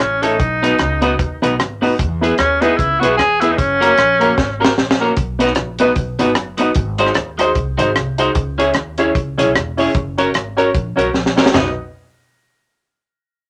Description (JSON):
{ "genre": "ska", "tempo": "151 BPM", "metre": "4/4", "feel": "swing 58% on 8ths", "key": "B major", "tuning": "A4 = 440 Hz", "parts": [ { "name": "bright tenor saxophone", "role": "melody", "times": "0.0-4.8 s", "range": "C#4 to G#4", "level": "-18 LUFS", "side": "equal", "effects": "none" }, { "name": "upright bass", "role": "bass", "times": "0.0-11.8 s", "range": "E1 to E2", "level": "-27 LUFS", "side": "equal", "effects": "none" }, { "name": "deep reggae drum kit", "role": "drums", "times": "0.0-11.6 s", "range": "hi-hat, kick drum, rim click, snare drum, toms", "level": "-20 LUFS", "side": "equal", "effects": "none" }, { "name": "clean electric guitar", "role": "accompaniment", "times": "0.2-11.7 s", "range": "G#3 to C#5", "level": "-22 LUFS", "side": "equal", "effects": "none" }, { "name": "warm upright piano", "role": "stabs", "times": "0.2-11.7 s", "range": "A3 to D#5", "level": "-20 LUFS", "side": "equal", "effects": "none" } ], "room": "moderate small room reverb, RT60 0.5 s", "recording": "none", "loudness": "-16 LUFS", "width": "mono", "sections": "0.0-5.2 A section; 5.2-11.5 B section; 11.5-13.1 C section", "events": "drum fill 4.4-5.2, 11.1-11.5", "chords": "0.4 B; 2.0 E; 3.6 F#; 5.2 B; 6.8 G#7; 8.4 C#m; 9.9 F#; 11.5 B" }